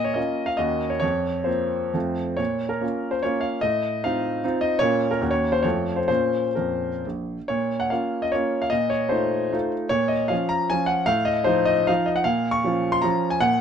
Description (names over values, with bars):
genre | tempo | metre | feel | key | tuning
classical, romantic triple-time dance for piano with dotted rhythms | 118-162 BPM | 3/4 | rubato | Bb minor | A4 = 439 Hz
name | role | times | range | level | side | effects
clear baby grand piano | solo | 0.0-13.6 s | Bb1 to Db6 | -21 LUFS | equal | none
room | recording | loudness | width
light reverb | dark, warm production | -21 LUFS | side -8 dB against mid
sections
0.0-7.5 A section; 7.5-13.6 B section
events
none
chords
0.0 Bbm; 0.6 Ebm7; 1.0 Fsus4; 2.0 F; 2.4 Bbm; 3.6 F7/A; 4.8 Bbm; 5.2 Ebm7; 5.7 F; 6.1 Bbm; 8.7 F7/Bb; 9.9 Bbm; 11.1 F7/A; 12.3 Bbm